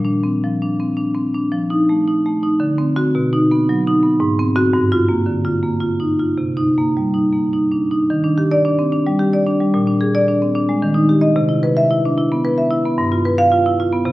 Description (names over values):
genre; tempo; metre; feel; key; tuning
classical, contemporary piece for solo marimba; 111 BPM; 3/4; rubato; C dorian, Eb major from 8.1 s; A4 = 439 Hz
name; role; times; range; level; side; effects
marimba with medium hard mallets; solo; 0.0-14.1 s; G2 to F5; -14 LUFS; equal; none
room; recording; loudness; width
moderate recital hall reverb, RT60 1.3 s; none; -14 LUFS; side -17 dB against mid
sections
0.0-8.1 A section; 8.1-14.1 B section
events
none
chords
0.0 Bbadd9; 1.5 F7; 2.6 D7; 3.2 B; 4.2 Ab7; 4.7 Gm7; 6.4 Cm7; 8.1 Ebmaj7; 9.7 Bb9; 10.8 Eb; 11.4 Cmaj7; 13.0 G7